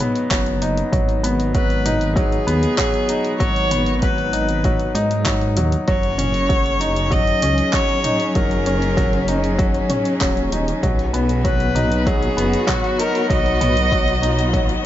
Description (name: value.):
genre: piano and strings electronica.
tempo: 97 BPM.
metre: 4/4.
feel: straight.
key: G# minor.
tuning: A4 = 440 Hz.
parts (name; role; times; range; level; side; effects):
felt-muted upright piano; riff; 0.0-14.9 s; F#3 to D#4; -21 LUFS; left 1 dB; digital delay.
deep house drum kit; drums; 0.0-14.8 s; handclaps, hi-hat, toms; -27 LUFS; right 1 dB; small room reverb.
dark detuned saw bass; bass; 0.3-14.8 s; D#1 to G#2; -22 LUFS; equal; sidechain pumping.
electronic kick drum; drums; 0.3-14.7 s; none; -22 LUFS; equal; small room reverb.
clear viola; melody; 1.5-14.9 s; F#4 to D#5; -22 LUFS; left 1 dB; none.
dark string quartet; sustained chords; 5.9-14.9 s; F#3 to D#5; -26 LUFS; left 1 dB; none.
room: moderate recital hall reverb, RT60 1.5 s.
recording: nothing above 7.6 kHz.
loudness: -16 LUFS.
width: side -12 dB against mid.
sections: 0.0-14.9 A section.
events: none.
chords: 0.0 G#m7; 5.9 F#6; 10.8 B.